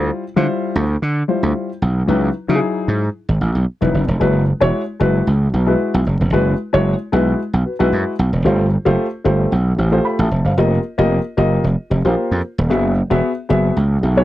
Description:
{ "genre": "early-eighties boogie funk", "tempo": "113 BPM", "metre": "4/4", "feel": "straight", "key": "unclear", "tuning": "A4 = 444 Hz", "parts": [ { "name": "dark baby grand piano", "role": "accompaniment", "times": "0.0-14.2 s", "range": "F#3 to B5", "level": "-18 LUFS", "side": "left 2 dB", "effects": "none" }, { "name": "gritty slap bass", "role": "bass", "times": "0.0-14.2 s", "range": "Eb1 to D3", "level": "-16 LUFS", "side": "right 1 dB", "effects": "overdrive" } ], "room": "little or no reverb", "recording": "dry, close 1970s-style studio recording", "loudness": "-15 LUFS", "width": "side -15 dB against mid", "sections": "0.0-4.2 A section; 4.2-14.2 B section", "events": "none", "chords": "0.0 Dm11; 2.1 C#m11; 4.2 F#9sus4; 8.5 G9sus4; 10.6 F9sus4; 12.7 F#9sus4" }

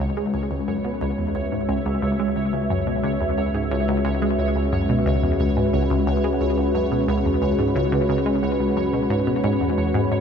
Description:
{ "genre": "ambient, sequencer-driven space music", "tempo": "89 BPM", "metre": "4/4", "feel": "straight", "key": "C# minor", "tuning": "A4 = 440 Hz", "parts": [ { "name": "sweeping resonant pad", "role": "sustained chords", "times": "0.0-10.2 s", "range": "Ab3 to E5", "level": "-22 LUFS", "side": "left 1 dB", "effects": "chorus" }, { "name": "analog pluck", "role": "riff", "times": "0.0-10.2 s", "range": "C#2 to G#3", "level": "-24 LUFS", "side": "equal", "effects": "chorus, phaser, ping-pong delay" }, { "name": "round analog bass", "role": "bass", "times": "0.0-10.2 s", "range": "G#1 to C#2", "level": "-30 LUFS", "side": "equal", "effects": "none" }, { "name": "pulsing gated texture", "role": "texture", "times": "0.0-10.2 s", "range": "C#5", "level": "-31 LUFS", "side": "right 6 dB", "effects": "chorus, built-in reverb" } ], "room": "moderate huge ambient reverb, RT60 7.7 s", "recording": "none", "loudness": "-19 LUFS", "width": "side -7 dB against mid", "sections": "0.0-10.2 A section", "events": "none", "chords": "0.0 C#m" }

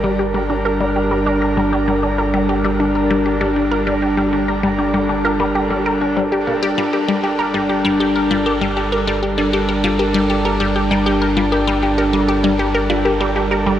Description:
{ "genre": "ambient, sequencer-driven space music", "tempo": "98 BPM", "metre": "4/4", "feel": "straight", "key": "G minor", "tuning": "A4 = 440 Hz", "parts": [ { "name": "evolving wavetable pad", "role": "sustained chords", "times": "0.0-13.8 s", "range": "G3 to Bb4", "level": "-18 LUFS", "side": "equal", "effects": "chorus, built-in reverb" }, { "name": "thumb-piano-like synth pluck", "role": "arpeggios", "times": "0.0-13.6 s", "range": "D4 to G5", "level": "-26 LUFS", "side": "equal", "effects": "chorus, auto-pan, tape echo" }, { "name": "resonant blip pluck", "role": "riff", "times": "0.0-13.7 s", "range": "G3 to Bb4", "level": "-19 LUFS", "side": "left 1 dB", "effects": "phaser, tape echo" }, { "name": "round analog bass", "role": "bass", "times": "0.0-13.8 s", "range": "G1", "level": "-25 LUFS", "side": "equal", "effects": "none" } ], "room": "wet shimmer reverb, RT60 7.5 s", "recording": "worn, warbling old tape, cassette tape, warbly pitch drift", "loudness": "-15 LUFS", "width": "side -11 dB against mid", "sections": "0.0-13.8 A section", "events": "fade-in on synth arpeggio sound 0.0-13.8", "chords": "0.0 Gm" }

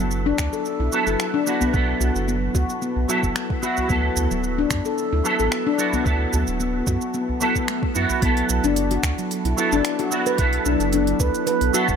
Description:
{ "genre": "organic downtempo", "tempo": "111 BPM", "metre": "4/4", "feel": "swing 53% on 16ths", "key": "B minor pentatonic", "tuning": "A4 = 440 Hz", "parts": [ { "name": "electric guitar with an envelope filter", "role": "accompaniment", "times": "0.0-12.0 s", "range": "F#3 to A4", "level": "-24 LUFS", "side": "right 3 dB", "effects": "ensemble chorus, sidechain pumping, ping-pong delay" }, { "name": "handpan", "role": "arpeggios", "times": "0.0-12.0 s", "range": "F#3 to B4", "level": "-23 LUFS", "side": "left 4 dB", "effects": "ping-pong delay" }, { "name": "warm sub bass", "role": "bass", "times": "0.0-12.0 s", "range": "D1 to F#2", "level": "-24 LUFS", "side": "right 1 dB", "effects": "none" }, { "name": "organic electronic drum kit", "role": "drums", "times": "0.1-12.0 s", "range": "finger snaps, hi-hat, shaker", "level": "-29 LUFS", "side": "right 3 dB", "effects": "none" }, { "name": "electronic kick drum", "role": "drums", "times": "0.4-12.0 s", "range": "none", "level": "-24 LUFS", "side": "right 1 dB", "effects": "none" }, { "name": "udu", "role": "percussion", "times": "1.6-8.2 s", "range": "none", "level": "-29 LUFS", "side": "right 2 dB", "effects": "none" }, { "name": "swell", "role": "sound effects", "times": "7.4-8.2 s", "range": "none", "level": "-38 LUFS", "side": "right 2 dB", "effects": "none" }, { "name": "warbly tape-like pad", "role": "sustained chords", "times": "8.8-12.0 s", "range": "F#3 to A4", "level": "-29 LUFS", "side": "right 2 dB", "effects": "chorus, built-in reverb, sidechain pumping" } ], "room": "light reverb, digital ambience", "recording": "none", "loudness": "-19 LUFS", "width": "side -7 dB against mid", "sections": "0.0-8.2 A section; 8.2-12.0 B section", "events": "swell 7.4-8.2", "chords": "0.0 B7(no3); 3.9 D; 8.2 Bm7" }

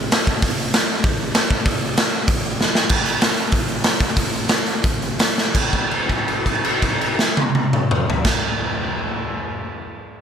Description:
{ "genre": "punk", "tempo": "164-194 BPM", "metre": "4/4", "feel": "straight", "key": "none", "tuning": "none", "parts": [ { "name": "raw garage drum kit", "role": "drums", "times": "0.1-8.3 s", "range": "crash cymbal, hi-hat, kick drum, snare drum, toms", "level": "-17 LUFS", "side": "equal", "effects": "none" } ], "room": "little or no reverb", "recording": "none", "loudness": "-17 LUFS", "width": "side -8 dB against mid", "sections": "0.0-2.9 A section; 2.9-5.5 B section; 5.5-8.5 C section", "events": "drum fill 2.6-2.9, 5.4; slowing down 2.9-5.5; held note 5.5-8.2", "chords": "none" }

